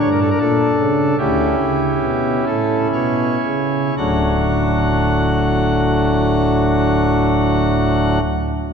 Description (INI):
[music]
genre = classical, chorale-style piece for pipe organ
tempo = 57-81 BPM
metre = 3/4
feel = rubato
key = D major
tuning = A4 = 441 Hz
[part]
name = pipe organ, cornet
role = solo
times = 0.0-8.2 s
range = D1 to F#5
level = -14 LUFS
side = equal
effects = none
[sound]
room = wet church reverb, RT60 3.5 s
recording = none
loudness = -14 LUFS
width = side -6 dB against mid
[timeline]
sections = 0.0-4.0 A section; 4.0-8.7 B section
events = slowing down 0.0-4.0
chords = 0.0 Gm; 1.2 A7/D; 4.0 D